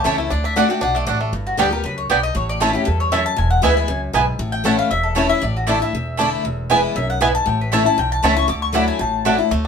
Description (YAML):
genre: bluegrass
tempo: 235 BPM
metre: 4/4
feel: straight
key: D major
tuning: A4 = 440 Hz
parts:
  - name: bluegrass banjo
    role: melody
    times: 0.0-9.7 s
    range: G3 to G4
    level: -24 LUFS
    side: right 4 dB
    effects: none
  - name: picked steel-string acoustic guitar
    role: accompaniment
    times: 0.0-9.7 s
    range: E2 to G4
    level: -22 LUFS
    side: left 4 dB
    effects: none
  - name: mandolin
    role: stabs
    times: 0.1-9.4 s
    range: A3 to A5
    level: -19 LUFS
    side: right 5 dB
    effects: none
  - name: upright bass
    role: bass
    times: 0.1-9.7 s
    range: E1 to E2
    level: -23 LUFS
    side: equal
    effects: none
  - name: mandolin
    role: melody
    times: 0.3-9.4 s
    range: F#4 to D6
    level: -22 LUFS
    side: left 3 dB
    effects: none
room: moderate studio reverb, RT60 0.6 s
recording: minimal, uncompressed stereo recording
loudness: -16 LUFS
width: side -6 dB against mid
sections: 0.0-1.3 A section; 1.3-9.5 B section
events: none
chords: 0.3 D; 1.3 G; 2.4 A; 3.4 E; 4.4 A; 5.4 Asus4; 6.5 E; 7.5 A; 8.5 Dadd9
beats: 0.06 | 0.31 0.57 0.82 1.08 | 1.34 1.59 1.85 2.10 | 2.36 2.61 2.87 3.12 | 3.38 3.64 3.89 4.15 | 4.40 4.66 4.92 5.17 | 5.43 5.68 5.94 6.19 | 6.45 6.71 6.96 7.22 | 7.47 7.73 7.98 8.24 | 8.49 8.75 9.01 9.26 | 9.52